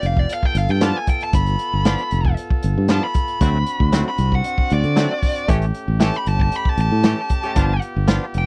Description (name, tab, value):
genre	straight-eighth soul blues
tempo	116 BPM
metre	4/4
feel	straight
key	unclear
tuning	A4 = 436 Hz
part	dark smooth lead guitar	melody	0.0-8.5 s	D5 to B5	-26 LUFS	equal	overdrive, slapback echo
part	warm horn section	sustained chords	0.0-8.5 s	A3 to A4	-34 LUFS	equal	none
part	fingered electric bass	bass	0.0-8.5 s	F1 to D3	-21 LUFS	equal	none
part	crunchy breakbeat drum kit	drums	0.0-8.5 s	hi-hat, kick drum, snare drum	-21 LUFS	equal	none
part	direct-recorded clean electric guitar	stabs	0.8-8.2 s	E3 to G4	-26 LUFS	equal	harmonic tremolo
room	little or no reverb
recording	dry, close 1970s-style studio recording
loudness	-19 LUFS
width	mono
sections	0.0-8.5 A section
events	lead electric guitar solo 0.0-8.5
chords	0.0 G7; 3.4 D7; 5.5 A7; 7.6 G7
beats	0.29 0.81 | 1.33 1.85 2.37 2.89 | 3.41 3.93 4.45 4.97 | 5.49 6.01 6.53 7.04 | 7.56 8.08